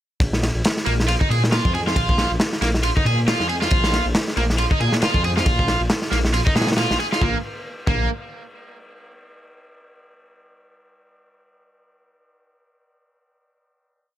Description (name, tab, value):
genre	breakbeat, breaks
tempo	137 BPM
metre	4/4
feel	swing 57% on 16ths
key	unclear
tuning	A4 = 440 Hz
part	detuned saw bass	bass	0.2-8.1 s	Bb1 to Bb2	-22 LUFS	equal	tube saturation
part	crunchy breakbeat drum kit	drums	0.2-8.0 s	kick drum, ride cymbal, snare drum	-21 LUFS	equal	none
part	cranked stack guitar	riff	0.9-8.1 s	Bb3 to Ab4	-23 LUFS	right 1 dB	overdrive, tape echo
room	small room reverb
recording	none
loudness	-17 LUFS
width	side -12 dB against mid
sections	0.2-7.2 drop; 7.2-9.0 final chord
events	drop 0.2-7.2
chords	0.2 Bb5; 7.2 N.C.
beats	| 0.21 0.65 1.09 1.52 | 1.96 2.40 2.84 3.28 | 3.71 4.15 4.59 5.03 | 5.47 5.90 6.34 6.78 | 7.22 7.66